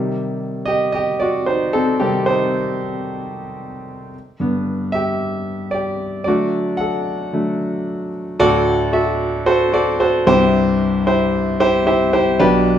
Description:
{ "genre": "pop", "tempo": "113 BPM", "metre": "4/4", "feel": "swing 56% on 16ths", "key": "unclear", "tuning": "A4 = 435 Hz", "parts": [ { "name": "warm grand piano", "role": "solo", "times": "0.0-12.8 s", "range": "B1 to B5", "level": "-16 LUFS", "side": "equal", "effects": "none" } ], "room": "wet large studio reverb, RT60 0.8 s", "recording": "band playing live in one room", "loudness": "-16 LUFS", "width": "side -9 dB against mid", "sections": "0.0-8.4 A section; 8.4-12.8 B section", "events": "grand piano solo 0.0-8.4; grand piano fill 11.6-12.7", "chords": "0.0 Cm; 4.1 G; 6.3 D; 10.3 C", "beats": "0.41 0.94 1.47 | 2.00 2.54 3.07 3.60 | 4.13 4.67 5.20 5.73 | 6.27 6.80 7.33 7.87 | 8.40 8.93 9.46 10.00 | 10.53 11.06 11.60 12.13 | 12.66" }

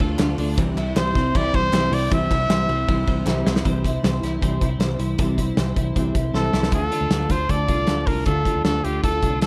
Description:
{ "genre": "jangly indie pop", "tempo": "156 BPM", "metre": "4/4", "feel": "straight", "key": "unclear", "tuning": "A4 = 435 Hz", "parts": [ { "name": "fingerpicked steel-string acoustic guitar", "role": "accompaniment", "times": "0.0-9.5 s", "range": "C3 to F4", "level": "-28 LUFS", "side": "equal", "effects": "none" }, { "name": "twelve-string electric guitar", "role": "arpeggios", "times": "0.0-9.5 s", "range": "C3 to C5", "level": "-31 LUFS", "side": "equal", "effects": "ensemble chorus, analog delay" }, { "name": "vintage muted fingered electric bass", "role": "bass", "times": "0.0-9.5 s", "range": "C2 to D2", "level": "-28 LUFS", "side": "equal", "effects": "none" }, { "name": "loose indie drum kit", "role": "drums", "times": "0.0-9.5 s", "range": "hi-hat, kick drum, ride cymbal, snare drum", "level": "-26 LUFS", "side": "equal", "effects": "none" }, { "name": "group handclap", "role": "percussion", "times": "0.2-3.4 s", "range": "none", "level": "-41 LUFS", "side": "equal", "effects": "none" }, { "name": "bright trumpet", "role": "melody", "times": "1.0-3.2, 6.4-9.5 s", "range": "G4 to E5", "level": "-26 LUFS", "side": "equal", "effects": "none" } ], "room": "light reverb", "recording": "dark, warm production", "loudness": "-21 LUFS", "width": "mono", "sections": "0.0-3.7 A section; 3.7-6.7 B section; 6.7-9.5 C section", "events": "drum fill 3.3-3.7, 6.3-6.7", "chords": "0.0 Dm; 0.6 C; 6.7 Dm", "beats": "0.20 | 0.58 0.97 1.35 1.73 | 2.12 2.50 2.88 3.27 | 3.65 4.04 4.42 4.80 | 5.19 5.57 5.96 6.34 | 6.72 7.11 7.49 7.88 | 8.26 8.65 9.03 9.42" }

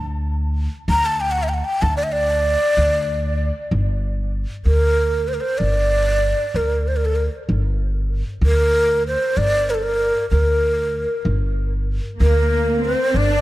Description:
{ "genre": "Persian modal ensemble", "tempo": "64 BPM (dotted quarters)", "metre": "6/8", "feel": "straight", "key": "D dastgah homayun", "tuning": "A4 = 440 Hz", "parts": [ { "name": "breathy mellow ney", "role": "melody", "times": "0.0-13.4 s", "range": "A4 to Bb5", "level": "-20 LUFS", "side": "equal", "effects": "analog delay" }, { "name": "upright bass", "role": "bass", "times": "0.0-13.4 s", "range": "G1 to D2", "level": "-20 LUFS", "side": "equal", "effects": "none" }, { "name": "dark symphonic cello section", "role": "second line", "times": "12.2-13.4 s", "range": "Bb3 to D4", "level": "-22 LUFS", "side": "equal", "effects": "none" } ], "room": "light reverb", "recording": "close, detailed microphones", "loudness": "-17 LUFS", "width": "side -16 dB against mid", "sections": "0.0-3.7 A section; 3.7-13.4 B section", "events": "none", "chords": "none", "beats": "0.89 | 1.83 2.77 | 3.71 4.66 | 5.60 6.54 | 7.49 8.43 | 9.37 10.32 | 11.26 12.21 | 13.15" }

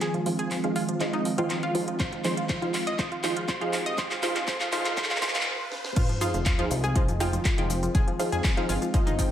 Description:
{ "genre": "progressive house", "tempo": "121 BPM", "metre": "4/4", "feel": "straight", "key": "F minor", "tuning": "A4 = 440 Hz", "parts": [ { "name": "warm analog pad", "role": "sustained chords", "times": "0.0-9.3 s", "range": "Eb3 to F4", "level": "-33 LUFS", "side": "equal", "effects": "chorus, sidechain pumping" }, { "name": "analog pluck", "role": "arpeggios", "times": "0.0-9.3 s", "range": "F3 to Eb5", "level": "-31 LUFS", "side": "equal", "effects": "chorus, sidechain pumping, diffuse ambient delay" }, { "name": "house drum kit", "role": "drums", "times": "0.0-9.3 s", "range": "crash cymbal, handclaps, hi-hat, rim click, shaker, snare drum", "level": "-31 LUFS", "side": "equal", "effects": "sidechain pumping on perc, sidechain pumping on hats, sidechain pumping on cymbals" }, { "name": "riser, swell and sub drop", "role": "sound effects", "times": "1.9-7.9 s", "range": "none", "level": "-38 LUFS", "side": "equal", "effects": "none" }, { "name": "wide unison pluck", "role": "stabs", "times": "0.3-9.3 s", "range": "F3 to G5", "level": "-31 LUFS", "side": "right 1 dB", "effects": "wide subtle chorus, sidechain pumping, diffuse ambient delay" }, { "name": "electronic kick drum", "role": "drums", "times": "2.0-9.3 s", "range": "none", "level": "-25 LUFS", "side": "equal", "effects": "none" }, { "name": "fat analog bass", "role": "bass", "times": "6.0-9.3 s", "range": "F1 to F2", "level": "-30 LUFS", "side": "equal", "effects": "sidechain pumping" } ], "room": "wet plate reverb, RT60 1.1 s, digital ambience", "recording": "dreamy mix soaked in reverb, high-pass filter", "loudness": "-24 LUFS", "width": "side -10 dB against mid", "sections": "0.0-6.0 A section; 6.0-9.3 B section", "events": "build-up 0.0-6.0; drum fill 0.0-5.5, 5.7; filter sweep on synth pluck 0.0-6.0; filter sweep on analog synth pad 0.0-6.0; filter sweep 0.0-6.0; swell 5.0-6.0; stop 5.5-6.0; drop 6.0-9.3; impact 6.0-7.9", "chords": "0.0 Fm7", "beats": "| 0.01 0.51 1.01 1.50 | 2.00 2.49 2.99 3.48 | 3.98 4.48 4.97 5.47 | 5.96 6.46 6.96 7.45 | 7.95 8.44 8.94" }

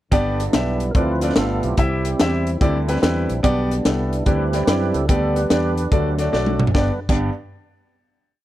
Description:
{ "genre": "uptempo gospel", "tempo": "145 BPM", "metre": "4/4", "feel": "swing 65% on 8ths", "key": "G major", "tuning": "A4 = 442 Hz", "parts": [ { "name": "clear grand piano", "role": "accompaniment", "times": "0.1-7.3 s", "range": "G2 to F5", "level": "-23 LUFS", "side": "equal", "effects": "none" }, { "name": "dark French horn section", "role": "sustained chords", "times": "0.1-7.0 s", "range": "D3 to F4", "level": "-32 LUFS", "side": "left 3 dB", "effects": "none" }, { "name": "tonewheel organ", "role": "sustained chords", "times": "0.1-7.0 s", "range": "F3 to B4", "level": "-25 LUFS", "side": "right 3 dB", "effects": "slow rotary speaker, overdrive, chorus vibrato" }, { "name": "fingered electric bass", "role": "bass", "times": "0.1-7.3 s", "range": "G1 to F#2", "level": "-23 LUFS", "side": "equal", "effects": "none" }, { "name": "crisp fusion drum kit", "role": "drums", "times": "0.1-7.2 s", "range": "crash cymbal, hi-hat, kick drum, snare drum, toms", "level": "-20 LUFS", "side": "equal", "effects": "none" } ], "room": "small room reverb", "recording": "none", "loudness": "-17 LUFS", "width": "side -14 dB against mid", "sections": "0.1-6.8 breakdown; 6.8-8.4 final chord", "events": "tonewheel organ solo 0.1-6.8; drum fill 6.3-6.8", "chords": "0.1 G; 1.0 Dm7; 1.4 G9; 1.8 C; 2.6 D9sus4; 3.4 G/B; 4.3 D9sus4; 5.1 G/D; 5.9 D; 6.8 G", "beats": "| 0.12 0.54 0.95 1.37 | 1.78 2.20 2.61 3.03 | 3.44 3.86 4.27 4.68 | 5.10 5.51 5.92 6.34 | 6.75 7.16" }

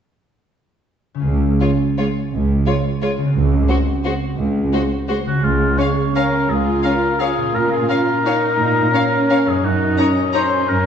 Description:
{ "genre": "classical, orchestral ballroom waltz", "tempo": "172 BPM", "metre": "3/4", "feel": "uneven beats, rubato", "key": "Db major", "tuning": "A4 = 442 Hz", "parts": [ { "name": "concert harp", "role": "arpeggios", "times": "1.1-10.9 s", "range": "Gb2 to Bb4", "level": "-22 LUFS", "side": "equal", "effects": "none" }, { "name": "rich studio cello section", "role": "bass", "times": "1.3-10.9 s", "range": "Db2 to Bb2", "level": "-22 LUFS", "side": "right 1 dB", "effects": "none" }, { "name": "rich studio double bass section", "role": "bass", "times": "1.3-4.7 s", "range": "Db2", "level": "-23 LUFS", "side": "right 3 dB", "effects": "none" }, { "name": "rich studio violin section", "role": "melody", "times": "1.6-10.4 s", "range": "C5 to Bb5", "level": "-28 LUFS", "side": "left 3 dB", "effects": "none" }, { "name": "warm studio violin section", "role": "second line", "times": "1.6-10.4 s", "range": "Db4 to Db5", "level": "-25 LUFS", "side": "left 3 dB", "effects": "none" }, { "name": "rich studio viola section", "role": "accompaniment", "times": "1.6-10.9 s", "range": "Ab3 to F4", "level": "-22 LUFS", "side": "right 1 dB", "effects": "none" }, { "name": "warm oboe", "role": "second line", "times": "5.3-10.9 s", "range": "F4 to Eb5", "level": "-19 LUFS", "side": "left 2 dB", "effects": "none" } ], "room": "wet recital hall reverb, RT60 1.4 s", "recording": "heard from further back in the room, nothing above 8.0 kHz", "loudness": "-15 LUFS", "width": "side -8 dB against mid", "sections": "1.3-5.4 A section; 5.4-10.9 B section", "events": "none", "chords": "1.3 Db; 7.6 Bbm; 9.6 Gb6", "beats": "| 1.26 1.61 1.98 | 2.32 2.66 3.02 | 3.35 3.69 4.05 | 4.38 4.72 5.09 | 5.44 5.79 6.16 | 6.50 6.85 7.21 | 7.55 7.90 8.26 | 8.60 8.94 9.30 | 9.64 9.99 10.35 | 10.68" }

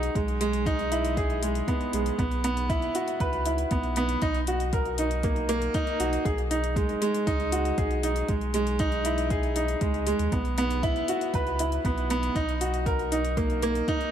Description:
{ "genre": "piano and strings electronica", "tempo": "118 BPM", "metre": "4/4", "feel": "straight", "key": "unclear", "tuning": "A4 = 439 Hz", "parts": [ { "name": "warm upright piano", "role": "riff", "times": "0.0-14.1 s", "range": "G#3 to B4", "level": "-26 LUFS", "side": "right 1 dB", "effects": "digital delay" }, { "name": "warm sub bass", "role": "bass", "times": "0.0-13.8 s", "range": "B1 to D#2", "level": "-31 LUFS", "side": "equal", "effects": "sidechain pumping" }, { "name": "electronic hi-hat", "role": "drums", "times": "0.0-14.1 s", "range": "none", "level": "-38 LUFS", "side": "left 7 dB", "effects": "overdrive" }, { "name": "electronic kick drum", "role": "drums", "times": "0.2-14.0 s", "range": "none", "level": "-29 LUFS", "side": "equal", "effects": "overdrive" } ], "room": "light reverb", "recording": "none", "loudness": "-24 LUFS", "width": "side -9 dB against mid", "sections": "0.0-2.2 A section; 2.2-14.1 A section", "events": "drop 0.0-2.2, 2.2-14.1", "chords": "0.2 Emaj7/B; 2.2 F#7sus4/B; 4.2 D#m/B; 6.3 B6; 8.3 Emaj7/B; 10.3 F#7sus4/B; 12.4 D#m/B", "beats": "| 0.15 0.66 1.17 1.68 | 2.19 2.69 3.20 3.71 | 4.22 4.73 5.24 5.75 | 6.25 6.76 7.27 7.78 | 8.29 8.80 9.30 9.81 | 10.32 10.83 11.34 11.85 | 12.36 12.86 13.37 13.88" }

